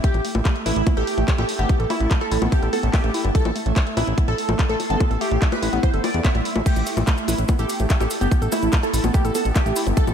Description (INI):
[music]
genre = psychedelic trance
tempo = 145 BPM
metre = 4/4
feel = straight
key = A minor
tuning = A4 = 440 Hz
[part]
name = supersaw stab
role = melody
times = 0.0-10.1 s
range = E4 to E5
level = -26 LUFS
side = right 1 dB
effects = phaser, sidechain pumping, analog delay
[part]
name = woody wave-folded pluck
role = riff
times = 0.0-10.0 s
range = G3 to B4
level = -29 LUFS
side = equal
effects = chorus, auto-pan, cassette tape, sidechain pumping, analog delay
[part]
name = electronic kick drum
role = drums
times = 0.0-10.1 s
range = none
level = -19 LUFS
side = equal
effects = none
[part]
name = garage drum kit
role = drums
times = 0.0-10.1 s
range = bongos, crash cymbal, handclaps, hi-hat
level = -28 LUFS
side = left 3 dB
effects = none
[part]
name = granular cloud pad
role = texture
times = 0.0-10.1 s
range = A3 to D6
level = -29 LUFS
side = right 3 dB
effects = built-in reverb, lush chorus, sidechain pumping
[part]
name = fat analog bass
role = bass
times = 0.1-10.1 s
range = G1 to E2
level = -22 LUFS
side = equal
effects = none
[part]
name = maracas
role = percussion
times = 6.7-10.1 s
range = none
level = -35 LUFS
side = right 4 dB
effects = none
[sound]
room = light reverb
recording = none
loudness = -18 LUFS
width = side -8 dB against mid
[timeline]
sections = 0.0-10.1 A section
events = none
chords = 0.0 A5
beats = | 0.04 0.45 0.87 1.28 | 1.69 2.11 2.52 2.94 | 3.35 3.76 4.18 4.59 | 5.00 5.42 5.83 6.25 | 6.66 7.07 7.49 7.90 | 8.31 8.73 9.14 9.56 | 9.97